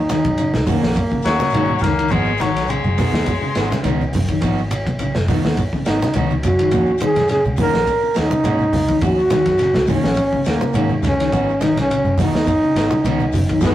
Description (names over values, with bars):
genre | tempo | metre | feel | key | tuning
afrobeat | 104 BPM | 4/4 | swing 54% on 16ths | Eb minor | A4 = 440 Hz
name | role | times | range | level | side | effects
breathy trombone | melody | 0.0-1.8, 5.9-13.7 s | Bb3 to Bb4 | -18 LUFS | equal | none
fingered electric bass | bass | 0.0-13.7 s | Gb1 to Ab2 | -24 LUFS | equal | none
electric guitar at the edge of break-up | arpeggios | 0.1-13.7 s | Db3 to Ab3 | -24 LUFS | left 3 dB | none
electric guitar at the edge of break-up | stabs | 0.1-13.7 s | Eb3 to Ab4 | -27 LUFS | right 4 dB | tape echo
crunchy breakbeat drum kit | drums | 0.1-13.7 s | hi-hat, kick drum, ride cymbal, snare drum | -24 LUFS | equal | none
congas | percussion | 0.1-13.7 s | none | -23 LUFS | right 1 dB | none
shekere | percussion | 0.1-13.7 s | none | -34 LUFS | left 2 dB | none
breathy baritone saxophone | second line | 1.2-3.8 s | Gb3 to Bb3 | -20 LUFS | left 4 dB | none
room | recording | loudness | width
moderate stone room reverb, RT60 1.1 s | rough rehearsal-room recording, warm saturation | -15 LUFS | side -13 dB against mid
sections
0.0-13.7 A section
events
none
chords
0.0 Ebm7; 2.1 Abm7; 6.7 Ebm7; 11.3 Abm7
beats
0.39 0.97 1.54 | 2.12 2.70 3.27 3.85 | 4.42 5.00 5.58 6.15 | 6.73 7.30 7.88 8.45 | 9.03 9.61 10.18 10.76 | 11.33 11.90 12.48 13.05 | 13.63